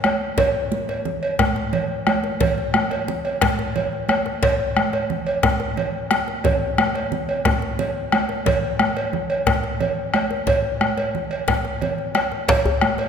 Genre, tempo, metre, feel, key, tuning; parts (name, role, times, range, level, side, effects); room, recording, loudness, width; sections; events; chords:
west african traditional, West African drum ensemble; 119 BPM (dotted quarters); 12/8; straight
bombo; percussion; 0.0-13.0 s; -23 LUFS; left 2 dB
congas; percussion; 0.0-13.0 s; -26 LUFS; right 4 dB
cowbell; percussion; 0.0-13.1 s; -24 LUFS; right 1 dB
djembe; percussion; 0.4-13.1 s; -29 LUFS; left 4 dB
djembe; percussion; 12.5-12.8 s; -22 LUFS; left 1 dB
wet concert hall reverb, RT60 2.4 s; minimal, uncompressed stereo recording; -19 LUFS; side -7 dB against mid
0.0-12.5 A section